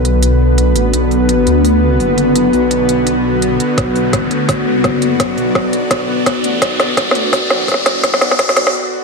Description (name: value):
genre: half-time drum and bass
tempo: 169 BPM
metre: 4/4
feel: swing 57% on 16ths, half-time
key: B minor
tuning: A4 = 441 Hz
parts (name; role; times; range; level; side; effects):
- bowed-like drone; sustained chords; 0.0-9.0 s; D3 to D5; -14 LUFS; left 1 dB; built-in reverb, sidechain pumping
- phased detuned saw bass; bass; 0.0-8.7 s; F#1 to D2; -18 LUFS; equal; phaser
- organic electronic drum kit; drums; 0.0-8.7 s; hi-hat, snare drum; -16 LUFS; equal; none
- riser; sound effects; 1.9-8.7 s; none; -23 LUFS; equal; none
- electronic kick drum; drums; 3.8-8.5 s; none; -23 LUFS; equal; none
room: moderate lush hall reverb, RT60 1.9 s, digital ambience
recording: dark, warm production, high-pass filter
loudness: -11 LUFS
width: side -4 dB against mid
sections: 0.0-9.0 A section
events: build-up 0.0-9.0; filter sweep 0.0-9.0; riser 1.9-8.7; drum fill 3.8-8.7; break 8.7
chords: 0.0 Bm